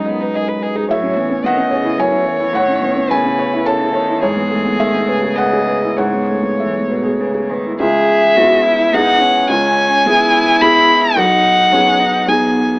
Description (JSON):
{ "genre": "neoclassical piano and strings", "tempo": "107 BPM", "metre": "3/4", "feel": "rubato", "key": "unclear", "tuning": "A4 = 440 Hz", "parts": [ { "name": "rich violin", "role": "melody", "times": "0.0-12.8 s", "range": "B3 to B5", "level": "-15 LUFS", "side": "equal", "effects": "none" }, { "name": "rich cello", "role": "second line", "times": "0.0-12.8 s", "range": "B2 to G#4", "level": "-20 LUFS", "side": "equal", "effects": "none" }, { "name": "felt-muted upright piano", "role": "accompaniment", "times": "0.0-12.8 s", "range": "B1 to A5", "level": "-16 LUFS", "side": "equal", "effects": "none" } ], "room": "light reverb", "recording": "AM radio sound", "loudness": "-12 LUFS", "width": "side -28 dB against mid", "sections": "0.0-7.8 A section; 7.8-12.8 B section", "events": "none", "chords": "0.0 G#m/B; 0.9 A; 4.2 E6/G#; 7.8 C#m7; 11.2 G#m/B", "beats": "0.34 | 0.89 1.44 1.99 | 2.54 3.10 3.66 | 4.22 4.79 5.37 | 5.97 6.59 7.20 | 7.80 8.37 8.93 | 9.50 10.06 10.62 | 11.17 11.72 12.28" }